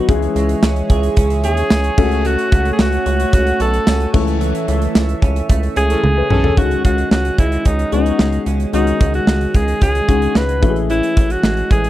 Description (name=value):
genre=1980s-style pop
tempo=111 BPM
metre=4/4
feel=straight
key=unclear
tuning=A4 = 440 Hz
part: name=dark grand piano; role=accompaniment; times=0.0-11.9 s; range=F#3 to C#5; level=-23 LUFS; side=left 10 dB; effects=none
part: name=chorused pulse-width pad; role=sustained chords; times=0.0-6.5 s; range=A3 to C#6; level=-24 LUFS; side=right 2 dB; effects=none
part: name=direct-recorded clean electric guitar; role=riff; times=0.0-11.9 s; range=D#3 to G#4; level=-25 LUFS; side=right 5 dB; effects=analog chorus
part: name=rubbery square bass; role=bass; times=0.1-11.9 s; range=A1 to D#2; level=-18 LUFS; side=equal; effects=none
part: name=modern studio drum kit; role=drums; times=0.1-11.9 s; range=crash cymbal, hi-hat, kick drum, snare drum, tambourine, toms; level=-15 LUFS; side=equal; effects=none
part: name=bright alto saxophone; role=melody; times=1.4-11.9 s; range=D#4 to B4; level=-20 LUFS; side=equal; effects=tape echo
part: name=analog synth brass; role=stabs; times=5.9-6.5 s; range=E3 to A4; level=-21 LUFS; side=left 1 dB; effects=chorus
room=small room ambience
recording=dry, close 1970s-style studio recording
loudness=-13 LUFS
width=side -14 dB against mid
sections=0.0-6.6 A section; 6.6-11.9 B section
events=band accent 4.4-6.6; drum fill 6.0-6.6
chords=0.1 C#m; 2.0 F#m/C#; 4.1 A/C#; 6.6 G#7sus4/C#; 10.6 Amaj7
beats=| 0.09 0.63 1.17 1.71 | 2.25 2.79 3.33 3.87 | 4.41 4.95 5.49 6.03 | 6.57 7.12 7.66 8.20 | 8.74 9.28 9.82 10.36 | 10.90 11.44